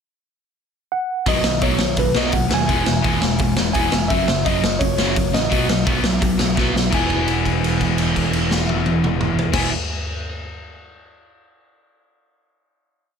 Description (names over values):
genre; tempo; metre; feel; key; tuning
punk rock; 170 BPM; 4/4; straight; E major; A4 = 440 Hz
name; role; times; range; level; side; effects
mellow tine electric piano; melody; 0.9-9.7 s; B4 to G#5; -25 LUFS; equal; medium stereo tremolo
distorted electric guitar; riff; 1.3-9.7 s; F#2 to E4; -23 LUFS; left 12 dB; distortion
overdriven semi-hollow guitar; riff; 1.3-9.7 s; E2 to B3; -23 LUFS; right 11 dB; none
modern bright picked electric bass; bass; 1.3-9.7 s; E1 to D#2; -25 LUFS; equal; none
raw garage drum kit; drums; 1.3-9.6 s; crash cymbal, hi-hat, kick drum, snare drum, toms; -21 LUFS; equal; none
room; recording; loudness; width
light reverb; none; -16 LUFS; side -7 dB against mid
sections
0.0-1.3 pickup bar; 1.3-6.9 verse; 6.9-9.8 final chord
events
drum fill 6.6-6.9; held note 6.9-9.5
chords
0.0 N.C.; 1.3 B; 2.7 E; 4.1 F#5; 5.5 B; 6.9 E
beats
0.21 0.57 0.92 | 1.28 1.63 1.99 2.34 | 2.69 3.04 3.40 3.75 | 4.10 4.46 4.81 5.16 | 5.51 5.87 6.22 6.57 | 6.92 7.28 7.63 7.98 | 8.34 8.69 9.04 9.40